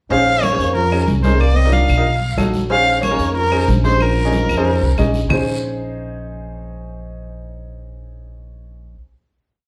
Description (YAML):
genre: Afro-Cuban jazz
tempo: 185 BPM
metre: 4/4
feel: straight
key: Bb minor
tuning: A4 = 440 Hz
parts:
  - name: warm erhu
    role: melody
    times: 0.1-5.0 s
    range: Bb4 to F5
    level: -21 LUFS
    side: equal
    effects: none
  - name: breathy trombone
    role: second line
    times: 0.1-5.0 s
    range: F3 to D4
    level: -27 LUFS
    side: equal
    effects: none
  - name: warm baby grand piano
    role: accompaniment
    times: 0.1-9.0 s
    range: Db4 to Eb5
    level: -24 LUFS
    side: equal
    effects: none
  - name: upright bass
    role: bass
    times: 0.1-8.9 s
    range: Bb1 to F2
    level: -22 LUFS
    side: equal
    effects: none
  - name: congas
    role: percussion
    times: 0.1-5.4 s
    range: none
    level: -27 LUFS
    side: equal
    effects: none
  - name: guiro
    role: percussion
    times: 0.1-5.4 s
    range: none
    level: -38 LUFS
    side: equal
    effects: none
  - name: claves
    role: percussion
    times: 0.4-5.4 s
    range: none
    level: -32 LUFS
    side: equal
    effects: none
room: moderate large studio reverb, RT60 0.8 s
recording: band playing live in one room, lossy compression artefacts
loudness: -16 LUFS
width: mono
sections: 0.1-5.3 A section; 5.3-7.9 final chord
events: none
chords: 0.1 Bbm11; 1.4 Cm11; 2.1 B9; 2.7 Bbm11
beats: | 0.10 0.43 0.75 1.08 | 1.40 1.73 2.05 2.38 | 2.70 3.03 3.35 3.68 | 4.00 4.33 4.65 4.98 | 5.30 5.63 5.95 6.28 | 6.60 6.92 7.25 7.58